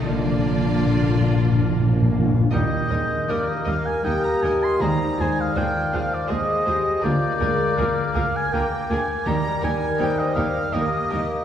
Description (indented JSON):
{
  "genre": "classical, slow romantic movement for symphony orchestra",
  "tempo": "70-83 BPM",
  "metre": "3/4",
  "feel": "rubato",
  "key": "Eb major",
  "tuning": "A4 = 440 Hz",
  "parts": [
    { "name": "warm chamber violin section", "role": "melody", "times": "0.0-11.4 s", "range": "D5 to C6", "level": "-37 LUFS", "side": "left 2 dB", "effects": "none" },
    { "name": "rich chamber violin section", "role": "second line", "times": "0.0-11.2 s", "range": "D4 to Eb5", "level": "-36 LUFS", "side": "left 2 dB", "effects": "none" },
    { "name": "rich chamber viola section", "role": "accompaniment", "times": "0.0-11.2 s", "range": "G3 to F4", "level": "-31 LUFS", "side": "right 2 dB", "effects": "none" },
    { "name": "dark French horn section", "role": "sustained chords", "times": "0.0-11.4 s", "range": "D3 to C5", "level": "-28 LUFS", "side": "left 2 dB", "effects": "none" },
    { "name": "concert harp", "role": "arpeggios", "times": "0.0-11.4 s", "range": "Bb2 to F6", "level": "-29 LUFS", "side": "left 5 dB", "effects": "none" },
    { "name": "warm chamber cello section", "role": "bass", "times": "0.0-11.2 s", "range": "D2 to D3", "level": "-31 LUFS", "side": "right 2 dB", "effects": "none" },
    { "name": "timpani", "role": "percussion", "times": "0.0-10.3 s", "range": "Bb2 to Eb3", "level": "-22 LUFS", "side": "left 1 dB", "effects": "none" },
    { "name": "warm chamber double bass section", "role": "bass", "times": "0.1-11.2 s", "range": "Bb1 to Eb2", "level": "-31 LUFS", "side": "right 3 dB", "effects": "none" },
    { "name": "dark clarinet", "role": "second line", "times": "2.5-11.4 s", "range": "G4 to D5", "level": "-31 LUFS", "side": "right 2 dB", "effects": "none" },
    { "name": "mellow hollow silver concert flute", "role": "second line", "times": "2.5-11.4 s", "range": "D6 to G6", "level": "-31 LUFS", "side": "left 2 dB", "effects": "none" },
    { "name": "warm oboe", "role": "second line", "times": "2.5-11.2 s", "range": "D5 to C6", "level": "-26 LUFS", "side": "right 1 dB", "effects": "none" },
    { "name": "warm bassoon", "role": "accompaniment", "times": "2.5-11.4 s", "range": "F3 to Bb3", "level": "-29 LUFS", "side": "equal", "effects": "none" }
  ],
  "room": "wet scoring stage reverb, RT60 1.9 s",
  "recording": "heard from further back in the room",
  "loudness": "-19 LUFS",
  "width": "side -9 dB against mid",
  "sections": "0.0-2.5 A section; 2.5-11.4 B section",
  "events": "timpani fill 0.0-2.5",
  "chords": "0.0 Bb; 2.5 Eb; 4.8 Fm7/Eb; 7.0 Bb7/D; 9.3 Eb"
}